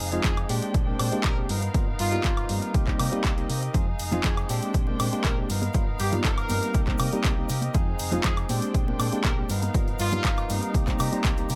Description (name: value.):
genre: filtered disco house.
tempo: 120 BPM.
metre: 4/4.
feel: straight.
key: unclear.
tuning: A4 = 439 Hz.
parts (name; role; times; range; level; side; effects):
muted chamber string section; sustained chords; 0.0-11.6 s; Ab3 to Bb5; -40 LUFS; equal; vintage 12-bit sampler grit, sidechain pumping.
direct-recorded clean electric guitar; riff; 0.0-11.6 s; F3 to A#4; -38 LUFS; equal; sidechain pumping.
hollow-body short-scale fingered electric bass; bass; 0.0-11.6 s; F1 to C3; -32 LUFS; equal; sidechain pumping.
tine electric piano; accompaniment; 0.1-11.5 s; F3 to C5; -34 LUFS; equal; phaser, sidechain pumping.
punchy analog drum machine; drums; 0.1-11.6 s; handclaps, hi-hat, woodblock; -34 LUFS; equal; overdrive, sidechain pumping on hats, sidechain pumping on perc.
bright horn section; melody; 0.2-10.5 s; F4 to Bb4; -36 LUFS; equal; sidechain pumping, tape echo.
electronic kick drum; drums; 0.2-11.3 s; none; -28 LUFS; equal; overdrive.
egg shaker and congas; percussion; 3.7-11.6 s; none; -38 LUFS; equal; sidechain pumping on perc.
room: digital ambience.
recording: none.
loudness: -25 LUFS.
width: mono.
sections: 0.0-11.6 A section.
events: none.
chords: 0.5 Bb13; 1.5 G7alt; 2.7 Cm7; 3.7 Fm7; 4.5 Bb13; 5.5 G7alt; 6.7 Cm7; 7.7 Fm7; 8.5 Bb13; 9.5 G7alt; 10.7 Cm7.